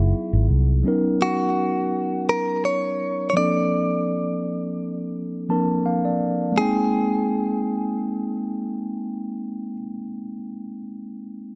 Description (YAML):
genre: contemporary R&B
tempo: 84 BPM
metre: 4/4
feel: swing 54% on 16ths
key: unclear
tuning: A4 = 444 Hz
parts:
  - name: direct-recorded clean electric guitar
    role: melody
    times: 0.0-9.8 s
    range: F#4 to D5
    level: -27 LUFS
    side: equal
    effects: digital delay
  - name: mellow tine electric piano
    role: accompaniment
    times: 0.0-11.6 s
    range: F3 to A5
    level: -26 LUFS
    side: equal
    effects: none
  - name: vintage muted fingered electric bass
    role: bass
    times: 0.0-0.8 s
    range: F#1 to C2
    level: -20 LUFS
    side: equal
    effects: none
room: light reverb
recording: none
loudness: -23 LUFS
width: mono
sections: 0.0-6.6 A section; 6.6-9.4 B section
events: tine electric piano fill 5.1-6.6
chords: 0.0 Emaj9; 0.9 Bmaj9; 3.4 Bbmaj9; 6.6 Abmaj9